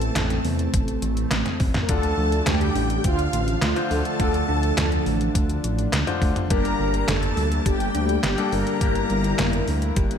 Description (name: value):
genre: synthwave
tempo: 104 BPM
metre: 4/4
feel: straight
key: D minor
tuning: A4 = 439 Hz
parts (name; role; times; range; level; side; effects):
- mellow synth brass; melody; 0.0-10.2 s; F4 to Bb4; -28 LUFS; left 1 dB; chorus, ping-pong delay
- string machine, violins; second line; 0.0-10.2 s; F5 to Bb5; -32 LUFS; equal; ensemble chorus
- chorused pulse-width pad; sustained chords; 0.0-10.2 s; E3 to E4; -29 LUFS; right 1 dB; sidechain pumping
- thumb-piano-like synth pluck; arpeggios; 0.0-10.1 s; C3 to G4; -33 LUFS; right 3 dB; chorus, ping-pong delay
- dark detuned saw bass; bass; 0.0-10.2 s; G1 to E2; -25 LUFS; equal; none
- detuned 8-bit digital drum machine; drums; 0.0-10.2 s; handclaps, hi-hat, snare drum, toms; -27 LUFS; equal; overdrive, gated reverb
- electronic kick drum; drums; 0.7-10.1 s; none; -24 LUFS; equal; overdrive
- bright baby grand piano; stabs; 1.9-10.2 s; G2 to C5; -30 LUFS; left 8 dB; none
room: light reverb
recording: none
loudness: -20 LUFS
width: side -8 dB against mid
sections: 0.0-10.2 A section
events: drum fill 1.5-1.9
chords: 0.0 Am; 1.9 Dm; 6.5 Gm